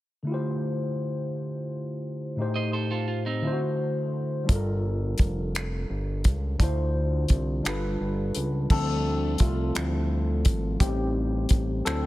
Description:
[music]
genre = slow six-eight R&B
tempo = 57 BPM (dotted quarters)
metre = 6/8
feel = straight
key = D minor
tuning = A4 = 440 Hz
[part]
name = overdriven tine electric piano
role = accompaniment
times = 0.2-12.1 s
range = A2 to C5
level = -28 LUFS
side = left 1 dB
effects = lush chorus
[part]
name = electric guitar at the edge of break-up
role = second line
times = 2.6-3.6 s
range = C4 to Eb5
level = -32 LUFS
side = right 5 dB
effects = none
[part]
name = fat analog bass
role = bass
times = 4.5-12.1 s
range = F1 to D2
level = -28 LUFS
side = equal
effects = none
[part]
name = damped 70s drum kit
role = drums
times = 4.5-12.0 s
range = crash cymbal, finger snaps, hi-hat, kick drum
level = -23 LUFS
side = equal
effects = none
[sound]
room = little or no reverb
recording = none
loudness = -24 LUFS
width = side -16 dB against mid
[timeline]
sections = 0.3-8.7 A section; 8.7-12.1 B section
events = tine electric piano solo 8.7-12.1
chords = 0.3 Dm11; 2.4 Am7b5; 3.4 D7; 4.5 Gm7; 6.6 Dm7; 7.6 G7; 8.7 Dm11; 10.8 Am7b5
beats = | 0.28 1.33 | 2.38 3.44 | 4.49 5.54 | 6.59 7.65 | 8.70 9.75 | 10.80 11.86

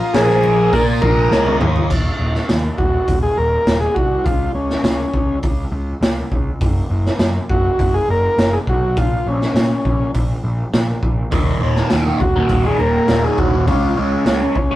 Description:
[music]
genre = psychedelic rock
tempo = 102 BPM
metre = 4/4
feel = straight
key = Eb minor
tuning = A4 = 441 Hz
[part]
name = combo organ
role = melody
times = 0.0-14.8 s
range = Db4 to Bb4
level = -18 LUFS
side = equal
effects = none
[part]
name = combo organ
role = sustained chords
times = 0.0-1.9 s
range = Bb4 to Eb6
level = -28 LUFS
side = right 1 dB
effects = none
[part]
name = fuzz guitar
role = riff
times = 0.1-1.9, 11.3-14.8 s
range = Eb2 to Bb4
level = -18 LUFS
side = equal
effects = distortion, phaser
[part]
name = fuzz picked electric bass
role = bass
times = 0.1-14.7 s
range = Eb1 to Bb2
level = -20 LUFS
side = equal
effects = overdrive
[part]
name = raw garage drum kit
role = drums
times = 0.1-14.7 s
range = crash cymbal, hi-hat, kick drum, snare drum, toms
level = -19 LUFS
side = equal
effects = none
[part]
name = congas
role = percussion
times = 0.1-1.9, 11.8-14.7 s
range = none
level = barely audible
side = none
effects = none
[sound]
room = light reverb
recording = rough rehearsal-room recording, tube saturation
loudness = -14 LUFS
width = side -15 dB against mid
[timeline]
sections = 0.0-1.9 A section; 1.9-14.8 B section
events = drum fill 1.2-1.9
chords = 0.0 Bb5; 1.9 Ebm; 4.3 N.C.; 9.0 Bbm; 11.3 Eb5; 13.7 Db5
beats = 0.14 0.72 1.31 | 1.90 2.49 3.08 3.67 | 4.25 4.84 5.43 6.02 | 6.61 7.20 7.79 8.38 | 8.97 9.55 10.14 10.73 | 11.32 11.91 12.50 13.09 | 13.67 14.26

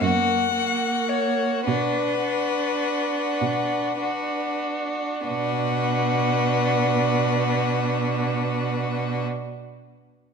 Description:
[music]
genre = classical, slow romantic movement for string quartet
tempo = 30-37 BPM (dotted quarters)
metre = 6/8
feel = rubato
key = B minor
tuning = A4 = 440 Hz
[part]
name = rich violin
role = melody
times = 0.0-9.2 s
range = B4 to F#5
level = -27 LUFS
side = left 9 dB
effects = none
[part]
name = rich violin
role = second line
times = 0.0-9.2 s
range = F#4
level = -28 LUFS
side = left 4 dB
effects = none
[part]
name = clear viola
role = accompaniment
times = 0.0-9.2 s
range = A#3 to D4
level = -27 LUFS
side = right 4 dB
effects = none
[part]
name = clear cello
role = bass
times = 0.0-9.2 s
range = F#2 to B2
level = -26 LUFS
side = right 5 dB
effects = none
[sound]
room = wet recital hall reverb, RT60 1.7 s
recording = none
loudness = -21 LUFS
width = side -6 dB against mid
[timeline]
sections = 0.0-5.3 A section; 5.3-8.8 B section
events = slowing down 0.0-5.3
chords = 0.0 F#; 1.7 Bm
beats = 0.02 | 1.67 3.41 | 5.28 7.04

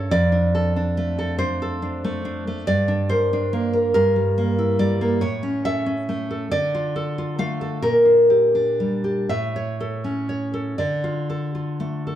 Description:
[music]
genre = romantic piece for solo classical guitar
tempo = 39-48 BPM (dotted quarters)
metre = 6/8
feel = rubato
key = D minor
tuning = A4 = 442 Hz
[part]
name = nylon-string guitar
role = solo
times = 0.0-12.2 s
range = F2 to F5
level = -19 LUFS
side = equal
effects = none
[sound]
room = moderate recital hall reverb, RT60 1.4 s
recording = dark, warm production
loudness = -19 LUFS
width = side -11 dB against mid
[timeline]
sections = 0.0-12.2 A section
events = none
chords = 0.1 Dm/F; 2.7 Gm; 3.9 Edim/G; 5.2 A; 6.5 Dm; 7.8 Gm/Bb; 9.3 A; 10.8 Dm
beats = | 0.12 1.39 | 2.67 3.94 | 5.21 6.51 | 7.83 9.30 | 10.78

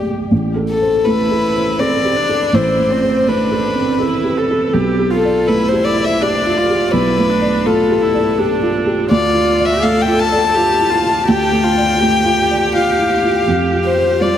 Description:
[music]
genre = neoclassical piano and strings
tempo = 82 BPM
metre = 3/4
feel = rubato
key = A minor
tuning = A4 = 442 Hz
[part]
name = warm violin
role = melody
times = 0.0-14.4 s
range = A4 to A5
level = -16 LUFS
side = left 3 dB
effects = tape echo
[part]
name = felt-muted upright piano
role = accompaniment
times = 0.0-14.4 s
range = A1 to D5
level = -17 LUFS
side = right 1 dB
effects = none
[part]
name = warm viola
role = accompaniment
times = 1.1-14.4 s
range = C4 to A4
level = -19 LUFS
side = right 2 dB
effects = none
[sound]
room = wet huge ambient reverb, RT60 5.1 s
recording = dreamy mix soaked in reverb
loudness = -12 LUFS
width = side -10 dB against mid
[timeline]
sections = 0.3-14.4 A section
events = none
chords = 0.3 Amadd9; 4.7 Gadd9/B; 9.1 Dmadd9; 13.5 Fsus2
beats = | 0.31 1.05 1.79 | 2.53 3.27 4.00 | 4.74 5.48 6.21 | 6.93 7.65 8.38 | 9.10 9.82 10.55 | 11.27 12.00 12.73 | 13.46 14.20

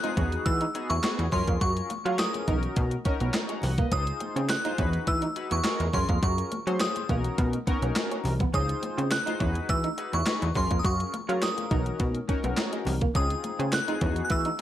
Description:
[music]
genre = early-eighties boogie funk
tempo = 104 BPM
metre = 4/4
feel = straight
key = unclear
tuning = A4 = 441 Hz
[part]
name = glassy synth bell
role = melody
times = 0.0-14.6 s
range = C6 to Gb6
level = -31 LUFS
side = equal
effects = chorus, slapback echo
[part]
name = chorused polysynth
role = accompaniment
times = 0.0-14.6 s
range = B3 to Bb5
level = -34 LUFS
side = left 3 dB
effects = none
[part]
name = electric guitar through a small old amp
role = riff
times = 0.0-14.6 s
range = Ab3 to Gb4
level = -35 LUFS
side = right 5 dB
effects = lush chorus
[part]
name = crisp 8-bit digital drum machine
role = drums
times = 0.0-14.6 s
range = handclaps, hi-hat, kick drum, snare drum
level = -29 LUFS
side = equal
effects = overdrive, gated reverb
[part]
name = congas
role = percussion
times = 0.0-14.6 s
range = none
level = -39 LUFS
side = left 1 dB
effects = none
[part]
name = plucky analog bass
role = bass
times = 0.2-14.5 s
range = Cb2 to Gb3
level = -28 LUFS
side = equal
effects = none
[sound]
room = digital ambience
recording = none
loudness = -25 LUFS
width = side -12 dB against mid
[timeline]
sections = 0.0-14.6 A section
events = none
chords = 0.2 Emaj9; 1.3 Gbmaj9; 2.5 Cbmaj9; 3.9 Dbmaj9; 4.8 Emaj9; 5.9 Gbmaj9; 7.1 Cbmaj9; 8.5 Dbmaj9; 9.4 Emaj9; 10.6 Gbmaj9; 11.7 Cbmaj9; 13.2 Dbmaj9; 14.0 Emaj9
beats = 0.46 1.04 | 1.61 2.19 2.77 3.34 | 3.92 4.50 5.08 5.65 | 6.23 6.80 7.38 7.96 | 8.54 9.11 9.69 10.27 | 10.84 11.42 12.00 12.57 | 13.15 13.73 14.30

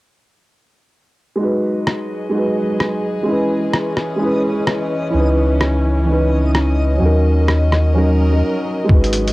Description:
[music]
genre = future garage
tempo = 128 BPM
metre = 4/4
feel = swing 62% on 16ths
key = G# minor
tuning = A4 = 441 Hz
[part]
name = felt-muted upright piano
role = accompaniment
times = 1.4-9.3 s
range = E3 to B4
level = -18 LUFS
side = right 1 dB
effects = vintage 12-bit sampler grit, sidechain pumping, low-pass filter, cassette tape, analog delay
[part]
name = dark chamber string section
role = sustained chords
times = 1.4-9.3 s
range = E3 to D#5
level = -24 LUFS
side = left 2 dB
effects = sidechain pumping, low-pass filter, cassette tape
[part]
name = backwards swelling texture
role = texture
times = 2.5-9.3 s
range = D#5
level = -31 LUFS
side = left 2 dB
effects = built-in reverb, cassette tape
[part]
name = lo-fi sampler-style drum kit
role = drums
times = 1.9-9.3 s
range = hi-hat, rim click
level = -19 LUFS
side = equal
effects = cassette tape
[part]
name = soft dub sub bass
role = bass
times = 5.1-9.3 s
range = G#1 to D#2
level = -15 LUFS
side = equal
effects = sidechain pumping
[part]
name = electronic kick drum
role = drums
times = 8.9-9.0 s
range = none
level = -11 LUFS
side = equal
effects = cassette tape
[sound]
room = little or no reverb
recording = home recording on cassette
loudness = -14 LUFS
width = side -19 dB against mid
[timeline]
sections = 1.4-8.9 A section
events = filter sweep on felt piano 1.4-8.9; break 8.4-8.9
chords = 1.4 G#m7; 3.3 E6; 5.1 C#m9; 7.0 D#m7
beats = | 1.40 1.86 2.33 2.80 | 3.27 3.74 4.21 4.68 | 5.15 5.61 6.08 6.55 | 7.02 7.49 7.96 8.43 | 8.90

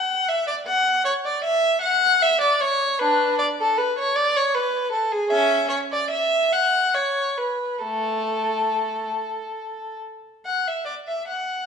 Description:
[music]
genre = classical, baroque-style suite movement for unaccompanied violin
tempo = 68-79 BPM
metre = 3/4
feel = rubato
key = A major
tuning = A4 = 440 Hz
[part]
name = rich violin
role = solo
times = 0.0-11.7 s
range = A3 to F#5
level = -20 LUFS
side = equal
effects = none
[sound]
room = wet recital hall reverb, RT60 1.5 s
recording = nothing above 10.4 kHz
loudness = -19 LUFS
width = side -6 dB against mid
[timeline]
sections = 0.0-10.5 A section; 10.5-11.7 A section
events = none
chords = none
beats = | 0.68 1.45 2.22 | 3.00 3.77 4.55 | 5.32 6.12 6.96 | 7.83 8.71 9.59 | 10.45 11.28

